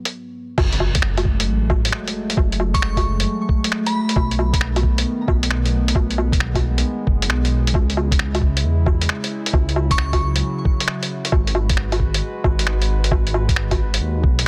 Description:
future garage; 134 BPM; 4/4; swing 67% on 16ths; F# dorian; A4 = 439 Hz
warbly tape-like pad; sustained chords; 0.0-14.5 s; C#3 to B4; -29 LUFS; equal; chorus, built-in reverb, vintage 12-bit sampler grit, sidechain pumping
lo-fi sampler-style drum kit; drums; 0.1-14.4 s; crash cymbal, finger snaps, hi-hat, woodblock; -25 LUFS; equal; soft clipping on snare
dark detuned saw bass; bass; 0.6-14.5 s; F#1 to E2; -23 LUFS; equal; tube saturation
electronic kick drum; drums; 0.6-14.4 s; -21 LUFS; equal
impact; sound effects; 0.6-2.4 s; -32 LUFS; equal
glassy synth bell; melody; 2.7-4.2, 9.9-10.1 s; B5 to C#6; -30 LUFS; equal; chorus, tape echo
light reverb; dense, heavily limited modern master; -19 LUFS; mono
0.6-14.5 A section
stop 0.1-0.6; impact 0.6-2.4
0.0 G#m7; 0.6 F#madd9; 4.2 B7; 7.7 C#m; 11.3 G#m7
0.13 | 0.58 1.03 1.47 1.92 | 2.37 2.82 3.27 3.71 | 4.16 4.61 5.06 5.50 | 5.95 6.40 6.85 7.29 | 7.74 8.19 8.64 9.09 | 9.53 9.98 10.43 10.88 | 11.32 11.77 12.22 12.67 | 13.12 13.56 14.01 14.46

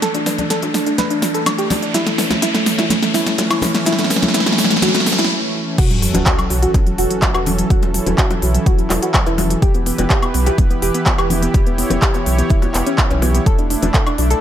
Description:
progressive house; 125 BPM; 4/4; straight; A4 = 441 Hz
warm analog pad; sustained chords; 0.0-14.4 s; E3 to C#5; -23 LUFS; right 1 dB; chorus, sidechain pumping
soft round pluck; arpeggios; 0.0-14.4 s; F#3 to B4; -20 LUFS; equal; wide subtle chorus, sidechain pumping, ping-pong delay
saturated sub bass; bass; 0.0-14.3 s; E1 to B1; -20 LUFS; equal; tube saturation, sidechain pumping, high-pass filter
big-room dance drum kit; drums; 0.0-14.4 s; crash cymbal, handclaps, hi-hat, snare drum, woodblock; -19 LUFS; equal; overdrive
riser and sub drop; sound effects; 0.0-7.7 s; -23 LUFS; equal
bongos, cowbell and congas; percussion; 0.1-14.3 s; -26 LUFS; left 3 dB; sidechain pumping on perc
electronic kick drum; drums; 5.8-14.0 s; -16 LUFS; equal; overdrive
moderate lush hall reverb, RT60 1.6 s; -14 LUFS; side -10 dB against mid
0.0-5.8 A section; 5.8-14.4 B section
build-up 0.0-5.8; drum fill 0.0-5.3; riser 0.0-5.3; filter sweep on analog synth pad 0.0-5.8; break 5.3-5.8; drop 5.8-14.4; impact 5.8-7.7
0.0 Dsus2/E; 1.9 A/E; 9.6 Em; 13.5 Dsus2/E
| 0.02 0.50 0.98 1.46 | 1.94 2.42 2.90 3.38 | 3.86 4.34 4.82 5.30 | 5.78 6.26 6.74 7.22 | 7.70 8.18 8.66 9.14 | 9.62 10.10 10.58 11.06 | 11.54 12.02 12.50 12.98 | 13.46 13.94

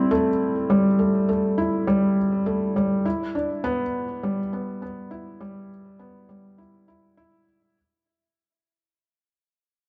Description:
electronica; 102 BPM; 4/4; straight; A4 = 440 Hz
felt-muted upright piano; solo; 0.0-7.8 s; G3 to E4; -24 LUFS; equal
wet echo chamber reverb, RT60 1.6 s; dark, warm production; -23 LUFS; mono
0.0-7.8 A section
fade-out 0.0-7.8
0.11 | 0.70 1.29 1.88 2.46 | 3.05 3.64 4.23 4.82 | 5.41 5.99 6.58 7.17

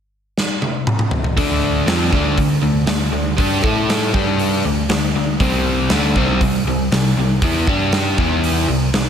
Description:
hard rock; 119 BPM; 4/4; straight; A4 = 436 Hz
huge arena drum kit; drums; 0.4-9.1 s; hi-hat, kick drum, snare drum, toms; -19 LUFS; equal
crunchy overdriven guitar; riff; 1.4-9.1 s; C3 to A4; -20 LUFS; right 8 dB; spring reverb, slapback echo
overdriven semi-hollow guitar; riff; 1.4-9.1 s; C3 to A4; -20 LUFS; left 8 dB; slapback echo
overdriven picked electric bass; bass; 1.4-9.1 s; C2 to A2; -22 LUFS; equal
light reverb, small room ambience; -15 LUFS; side -8 dB against mid
0.0-1.4 A section; 1.4-9.1 B section
drum fill 0.4-1.4
0.0 N.C.; 1.4 D5; 3.6 A5; 4.1 G5; 4.6 D5; 5.4 C5; 7.7 G5; 8.2 E5
0.37 0.88 | 1.38 1.88 2.38 2.88 | 3.39 3.89 4.39 4.89 | 5.40 5.90 6.41 6.91 | 7.42 7.92 8.43 8.93

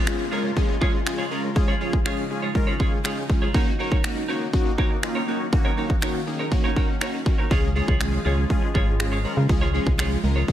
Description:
dance-pop; 121 BPM; 4/4; straight; Db major; A4 = 437 Hz
glassy FM pad; sustained chords; 0.0-10.5 s; Db3 to F4; -32 LUFS; left 1 dB; ensemble chorus, built-in reverb, sidechain pumping
semi-hollow electric guitar; riff; 0.0-10.5 s; Eb4 to Db5; -30 LUFS; right 4 dB; wide subtle chorus
downlifter; sound effects; 0.0-3.5 s; -38 LUFS; equal
big bright polysynth; accompaniment; 0.1-10.5 s; Ab3 to Bb4; -27 LUFS; equal; chorus, sidechain pumping
pop drum kit; drums; 0.1-10.5 s; finger snaps, kick drum; -23 LUFS; equal
organ-like FM bass; bass; 7.5-10.4 s; Ab1 to Db3; -23 LUFS; equal; sidechain pumping
little or no reverb; -20 LUFS; side -11 dB against mid
0.0-10.5 A section
0.0 Db; 3.5 Gb6; 7.5 Db
0.07 0.57 1.06 | 1.56 2.06 2.55 3.05 | 3.54 4.04 4.54 5.03 | 5.53 6.02 6.52 7.01 | 7.51 8.01 8.50 9.00 | 9.49 9.99 10.49

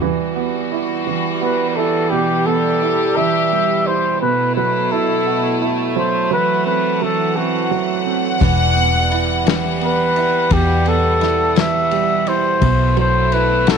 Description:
six-eight pop ballad; 57 BPM (dotted quarters); 6/8; straight; E minor; A4 = 440 Hz
warm baby grand piano; accompaniment; 0.0-13.8 s; B2 to F#4; -21 LUFS; right 14 dB
warm studio string section; sustained chords; 0.0-13.8 s; B2 to F#5; -21 LUFS; left 1 dB
breathy flugelhorn; melody; 1.4-13.8 s; F#4 to E5; -18 LUFS; left 1 dB
clear studio violin section; second line; 8.4-9.6 s; F#5; -20 LUFS; left 1 dB
vintage muted fingered electric bass; bass; 8.4-13.8 s; E1 to E2; -19 LUFS; left 1 dB
unplugged drum kit; drums; 8.4-13.8 s; kick drum, ride cymbal, snare drum; -22 LUFS; left 6 dB
light reverb, small room ambience; 1960s-style stereo with parts hard left and right; -14 LUFS; side -6 dB against mid
0.0-13.8 A section
0.0 Emadd9; 4.2 B7sus4; 6.3 F#m7b5; 8.4 Emadd9; 12.6 B7sus4
| 0.01 1.06 | 2.11 3.16 | 4.21 5.26 | 6.31 7.36 | 8.41 9.46 | 10.51 11.57 | 12.62 13.67

